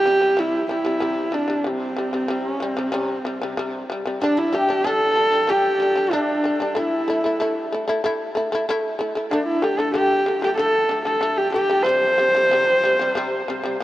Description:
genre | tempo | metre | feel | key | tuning
mongolian traditional, Mongolian folk | 94 BPM | 4/4 | straight | C gong mode | A4 = 439 Hz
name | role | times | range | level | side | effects
rich horsehead fiddle | melody | 0.0-13.8 s | C4 to C5 | -20 LUFS | equal | tape echo
shamisen | arpeggios | 0.1-13.8 s | C3 to E4 | -24 LUFS | left 1 dB | none
guzheng | second line | 4.2-13.8 s | D4 to C5 | -28 LUFS | left 2 dB | none
room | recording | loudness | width
moderate huge ambient reverb, RT60 9.1 s | worn, warbling old tape, cassette tape, warbly pitch drift | -18 LUFS | side -15 dB against mid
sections
0.0-4.2 A section; 4.2-13.8 B section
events
none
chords
0.0 C5; 4.2 G5; 6.8 A5; 9.3 D5; 11.9 C5

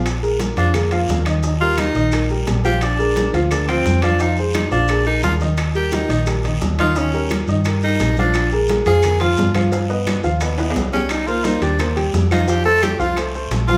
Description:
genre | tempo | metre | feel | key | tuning
Afro-Cuban jazz | 174 BPM | 4/4 | straight | Bb mixolydian | A4 = 440 Hz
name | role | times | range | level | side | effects
warm upright piano | accompaniment | 0.0-13.8 s | Eb3 to G5 | -24 LUFS | equal | none
hollow-body short-scale fingered electric bass | bass | 0.0-13.8 s | Bb1 to G2 | -23 LUFS | equal | none
bongos | percussion | 0.1-13.8 s | none | -33 LUFS | equal | none
claves | percussion | 0.1-13.3 s | none | -36 LUFS | equal | none
congas | percussion | 0.1-13.8 s | none | -30 LUFS | equal | none
guiro | percussion | 0.1-13.8 s | none | -38 LUFS | equal | none
maracas | percussion | 0.1-13.8 s | none | -40 LUFS | equal | none
timbales | percussion | 0.1-13.7 s | none | -32 LUFS | equal | none
clear tenor saxophone | second line | 0.6-13.8 s | Bb3 to A4 | -22 LUFS | equal | none
room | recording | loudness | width
wet large studio reverb, RT60 0.9 s | band playing live in one room | -18 LUFS | mono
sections
0.1-13.8 A section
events
tenor saxophone solo 0.1-13.8; drum fill 10.6-11.1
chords
0.1 Bb5; 1.4 Eb; 2.8 Bb7; 4.2 Fm; 4.9 Bb7sus4; 5.6 Eb; 8.3 Bb5; 9.7 Gaug7; 11.1 Cm7; 12.5 F

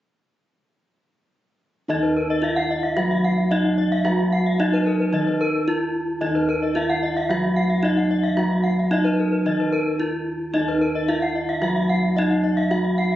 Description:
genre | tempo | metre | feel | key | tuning
Balinese gamelan | 111 BPM | 4/4 | straight | Eb pelog | A4 = 442 Hz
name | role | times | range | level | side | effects
gamelan-type bronze metallophone | melody | 1.9-13.2 s | Eb4 to Gb4-30c | -23 LUFS | equal | none
gamelan-type bronze metallophone | accompaniment | 1.9-13.2 s | Eb3 to Gb3-30c | -24 LUFS | equal | none
gamelan-type bronze metallophone | arpeggios | 1.9-13.2 s | Bb4-30c to Gb5-30c | -27 LUFS | left 2 dB | none
gamelan-type bossed gongs | bass | 1.9-13.2 s | Eb2 to Gb4-30c | -31 LUFS | right 1 dB | none
gamelan-type bronze metallophone | arpeggios | 2.2-13.1 s | Bb4-30c to Gb5-30c | -27 LUFS | right 1 dB | none
room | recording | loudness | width
wet recital hall reverb, RT60 1.4 s | recorded on a phone in the room, club reverb, nothing above 7.7 kHz | -19 LUFS | side -13 dB against mid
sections
1.9-13.2 A section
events
break 5.4-6.2, 9.7-10.5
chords
none

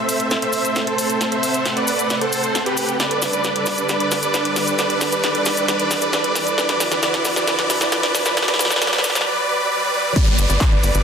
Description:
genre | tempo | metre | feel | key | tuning
uplifting trance | 134 BPM | 4/4 | straight | G major | A4 = 440 Hz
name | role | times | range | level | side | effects
big supersaw lead | melody | 0.0-11.0 s | G4 to E5 | -20 LUFS | right 1 dB | sidechain pumping, low-pass filter, digital delay
supersaw pad | sustained chords | 0.0-11.0 s | D3 to F#5 | -25 LUFS | right 1 dB | sidechain pumping
riser and downlifter | sound effects | 0.0-11.0 s | none | -30 LUFS | equal | none
punchy analog drum machine | drums | 0.1-11.0 s | crash cymbal, handclaps, hi-hat, snare drum | -22 LUFS | equal | high-pass filter on snare, sidechain pumping on hats, high-pass filter on hats, sidechain pumping on cymbals, high-pass filter on cymbals
cabasa | percussion | 0.1-11.0 s | none | -28 LUFS | left 4 dB | none
wide unison pluck | second line | 10.2-11.0 s | D5 | -30 LUFS | right 1 dB | sidechain pumping, digital delay
electronic kick drum | drums | 10.2-10.7 s | none | -17 LUFS | equal | none
tight sequencer bass | bass | 10.3-11.0 s | G1 | -19 LUFS | equal | sidechain pumping
room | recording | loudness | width
moderate digital room reverb, RT60 1.3 s, digital ambience | dense, heavily limited modern master, high-pass filter | -16 LUFS | side -7 dB against mid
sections
0.0-10.2 A section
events
build-up 0.0-10.2; drum fill 0.0-9.3; riser 0.0-10.2; break 9.3-10.2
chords
0.0 Am; 3.0 Gadd9; 6.6 Dadd9; 10.2 Gadd9

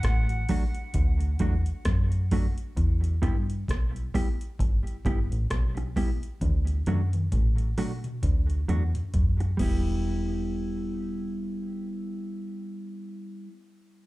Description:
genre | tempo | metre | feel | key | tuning
roots reggae | 66 BPM | 4/4 | swing 58% on 16ths | E minor | A4 = 440 Hz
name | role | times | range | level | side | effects
bright concert flute | melody | 0.0-1.6 s | F#5 | -39 LUFS | right 1 dB | tape echo, plate reverb, slapback echo
deep dub fingered electric bass | bass | 0.0-13.5 s | E1 to G2 | -26 LUFS | equal | none
booming analog drum machine | drums | 0.0-9.8 s | crash cymbal, hi-hat, kick drum, rim click, toms | -27 LUFS | equal | overdrive
mellow electric guitar | accompaniment | 0.5-13.5 s | F#3 to G4 | -32 LUFS | right 1 dB | tape echo, plate reverb
room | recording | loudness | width
little or no reverb | live gig heard through the venue's PA, tape saturation, club reverb | -25 LUFS | side -18 dB against mid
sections
0.0-2.8 A section; 2.8-10.0 B section; 10.0-13.7 C section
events
drum fill 6.4-10.0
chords
0.0 D; 2.8 Em; 6.4 D; 9.6 Em

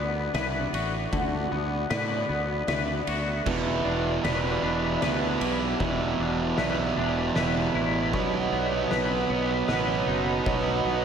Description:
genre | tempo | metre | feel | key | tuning
post-rock | 77 BPM | 3/4 | straight | E minor | A4 = 440 Hz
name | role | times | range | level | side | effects
shimmering ambient pad | sustained chords | 0.0-11.0 s | B3 to D#5 | -36 LUFS | left 3 dB | chorus, built-in reverb
twangy electric guitar | arpeggios | 0.0-11.0 s | B2 to B4 | -32 LUFS | left 5 dB | analog chorus, ping-pong delay
vibraphone with medium mallets | arpeggios | 0.0-11.0 s | B4 to F#5 | -34 LUFS | right 1 dB | ping-pong delay
fuzz fingered electric bass | bass | 0.0-11.0 s | E1 to A2 | -31 LUFS | left 1 dB | overdrive
oversized low-tuned drum kit | drums | 0.3-10.6 s | crash cymbal, kick drum, ride cymbal, snare drum | -33 LUFS | equal | none
thick fuzz guitar | riff | 3.5-11.0 s | E2 to B3 | -26 LUFS | right 5 dB | distortion
room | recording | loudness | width
moderate huge ambient reverb, RT60 7.3 s | dreamy mix soaked in reverb | -24 LUFS | side -7 dB against mid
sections
0.0-11.0 A section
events
build-up 0.0-11.0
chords
0.0 Bm; 3.5 Em7; 8.1 B

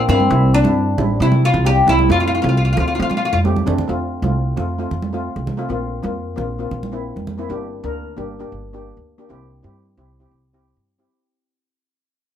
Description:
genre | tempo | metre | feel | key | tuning
calypso | 133 BPM | 4/4 | straight | F major | A4 = 440 Hz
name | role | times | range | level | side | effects
upright bass | bass | 0.0-11.1 s | G1 to F3 | -20 LUFS | equal | none
oud | melody | 0.1-3.4 s | C4 to G4 | -17 LUFS | left 1 dB | none
steel pan | accompaniment | 0.1-11.1 s | G3 to Bb4 | -23 LUFS | equal | none
congas | percussion | 0.1-7.4 s | none | -26 LUFS | right 3 dB | none
room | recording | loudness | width
moderate studio reverb, RT60 0.6 s | none | -16 LUFS | side -9 dB against mid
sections
0.0-3.9 A section; 3.9-11.1 B section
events
drum fill 3.3-3.9; fade-out 3.9-11.1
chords
0.3 Cadd9; 2.1 F; 5.7 Bbsus2; 7.5 Gm; 9.3 C

